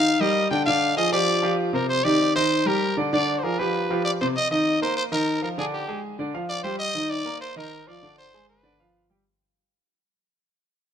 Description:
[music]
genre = latin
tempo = 196 BPM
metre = 4/4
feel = straight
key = unclear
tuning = A4 = 440 Hz
[part]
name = growling trumpet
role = melody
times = 0.0-9.1 s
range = G4 to G5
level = -24 LUFS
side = equal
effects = none
[part]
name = clear grand piano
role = accompaniment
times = 0.0-9.2 s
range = C3 to Bb5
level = -24 LUFS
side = equal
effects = none
[sound]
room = moderate plate reverb, RT60 2.6 s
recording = minimal, uncompressed stereo recording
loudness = -21 LUFS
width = side -8 dB against mid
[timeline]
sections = 0.0-4.3 A section; 4.3-9.3 B section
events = fade-out 4.3-9.3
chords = 0.1 Eb; 0.7 Ddim; 1.3 G5; 1.9 Cm; 2.5 Eb; 3.1 Ddim; 3.7 G7; 4.3 Eb5; 5.6 Dsus4; 6.2 G5; 6.8 Ebmaj7; 7.4 Eb5; 8.0 G#dim/D; 8.6 G7

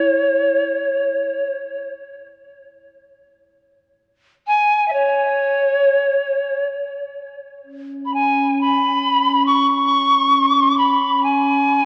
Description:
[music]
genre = world meditative, free-time meditation music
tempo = free time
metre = none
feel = none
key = unclear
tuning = A4 = 440 Hz
[part]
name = bright reedy polished pan flute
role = melody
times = 0.0-11.9 s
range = C#5 to C#6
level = -18 LUFS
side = equal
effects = tape echo
[part]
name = glass harmonica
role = texture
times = 7.7-11.9 s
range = C#4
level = -25 LUFS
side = equal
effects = none
[sound]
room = wet church reverb, RT60 3.4 s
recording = worn, warbling old tape, cassette tape, warbly pitch drift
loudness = -18 LUFS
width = mono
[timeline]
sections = 0.0-6.9 A section; 6.9-11.9 A section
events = none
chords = none

